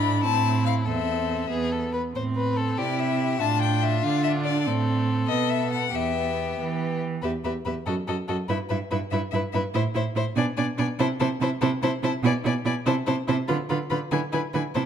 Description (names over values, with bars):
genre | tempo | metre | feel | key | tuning
quick classical-period movement for string quartet | 95 BPM (dotted quarters) | 6/8 | straight | A minor, E minor from 4.7 s | A4 = 440 Hz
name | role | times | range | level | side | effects
clear violin | melody | 0.0-14.8 s | D5 to B5 | -30 LUFS | left 13 dB | none
clear violin | second line | 0.0-14.8 s | E4 to D5 | -31 LUFS | left 5 dB | none
rich viola | accompaniment | 0.0-14.8 s | B3 to G4 | -29 LUFS | right 2 dB | none
rich cello | bass | 0.0-14.8 s | E2 to E3 | -26 LUFS | right 4 dB | none
room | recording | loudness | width
moderate recital hall reverb, RT60 1.9 s | none | -23 LUFS | side -8 dB against mid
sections
0.0-7.2 A section; 7.2-14.9 B section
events
none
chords
0.2 Am; 0.9 Am/E; 1.5 E; 2.2 Am; 3.4 Fmaj13/A; 4.7 Am; 5.3 B7; 5.9 Em; 7.9 D#dim/F#; 8.5 Em/G; 9.7 Am; 10.4 G#dim; 11.0 Am/C; 12.2 E7; 12.9 Am/C; 13.5 Bdim/D; 14.1 E7/D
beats
0.23 | 0.86 1.51 | 2.15 2.79 | 3.42 4.04 | 4.67 5.29 | 5.94 6.58 | 7.23 7.87 | 8.49 9.12 | 9.74 10.37 | 10.99 11.61 | 12.23 12.86 | 13.49 14.12 | 14.75